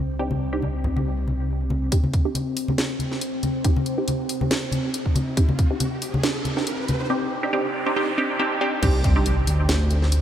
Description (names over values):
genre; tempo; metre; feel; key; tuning
deep dubstep; 139 BPM; 4/4; swing 54% on 16ths, half-time; C minor; A4 = 442 Hz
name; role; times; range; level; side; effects
deep dark ambient pad; sustained chords; 0.0-10.2 s; C4; -31 LUFS; left 1 dB; chorus, built-in reverb
dark detuned saw bass; bass; 0.0-1.9, 8.8-10.2 s; C2 to D2; -22 LUFS; equal; none
filtered dub chord stab; stabs; 0.2-9.3 s; C4 to G4; -26 LUFS; right 2 dB; phaser, dub echo
congas; percussion; 0.3-7.0 s; none; -27 LUFS; left 1 dB; none
electronic kick drum; drums; 1.9-5.7, 8.8-9.1 s; none; -20 LUFS; equal; studio reverb
garage drum kit; drums; 1.9-10.2 s; crash cymbal, hi-hat, snare drum; -28 LUFS; equal; studio reverb
riser, noise sweep and impact; sound effects; 4.2-10.2 s; none; -32 LUFS; right 1 dB; none
room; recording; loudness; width
moderate huge ambient reverb, RT60 4.8 s; dreamy mix soaked in reverb; -20 LUFS; side -10 dB against mid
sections
0.0-1.9 A section; 1.9-8.8 B section; 8.8-10.2 C section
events
build-up 1.9-8.8; filter sweep on synth stab 1.9-8.8; riser 4.2-7.1; noise sweep 7.1-8.8; drop 8.8-10.2; impact 8.8-10.2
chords
0.0 Cmadd9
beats
| 0.19 0.62 1.06 1.49 | 1.92 2.35 2.78 3.21 | 3.65 4.08 4.51 4.94 | 5.37 5.80 6.24 6.67 | 7.10 7.53 7.96 8.39 | 8.83 9.26 9.69 10.12